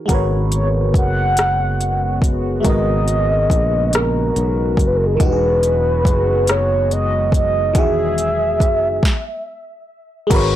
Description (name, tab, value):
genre	slow six-eight R&B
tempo	47 BPM (dotted quarters)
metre	6/8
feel	straight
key	unclear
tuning	A4 = 439 Hz
part	FM electric piano	accompaniment	0.0-10.6 s	D#3 to D#5	-23 LUFS	equal	chorus, phaser
part	warm analog pad	sustained chords	0.1-9.0 s	C#3 to G#4	-26 LUFS	left 1 dB	chorus
part	sustaining fretless electric bass	bass	0.1-10.6 s	E1 to B1	-20 LUFS	equal	tube saturation
part	smooth R&B drum kit	drums	0.1-10.5 s	crash cymbal, hi-hat, kick drum, rim click, snare drum	-17 LUFS	equal	overdrive
part	mellow horn-like synth lead	melody	0.5-9.5 s	G#4 to F#5	-19 LUFS	equal	chorus, tape echo
room	light reverb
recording	blown-out, overdriven recording, overdrive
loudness	-14 LUFS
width	side -12 dB against mid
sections	0.0-10.3 A section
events	stop 9.0-10.3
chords	0.1 G#m11; 5.2 Emaj9